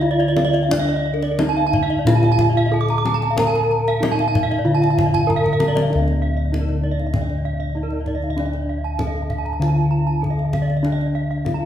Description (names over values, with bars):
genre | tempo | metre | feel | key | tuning
Balinese gamelan | 87-97 BPM | 4/4 | straight | D pelog | A4 = 438 Hz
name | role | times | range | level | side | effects
gamelan-type bronze metallophone | melody | 0.0-11.7 s | D4 to Bb4-20c | -23 LUFS | right 1 dB | none
gamelan-type bronze metallophone | arpeggios | 0.0-11.7 s | Bb4-20c to Bb5-20c | -26 LUFS | left 5 dB | none
gamelan-type bossed gongs | bass | 0.0-11.7 s | D2 to Bb4-20c | -20 LUFS | left 1 dB | none
gamelan-type bronze metallophone | arpeggios | 0.1-11.6 s | Bb4-20c to D6 | -25 LUFS | right 7 dB | none
kendang | percussion | 0.2-11.6 s | none | -26 LUFS | left 1 dB | none
room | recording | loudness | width
wet recital hall reverb, RT60 1.3 s | recorded in a church or concert hall | -17 LUFS | side -10 dB against mid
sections
0.0-5.9 A section; 5.9-11.7 B section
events
drum fill 5.1-5.9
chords
none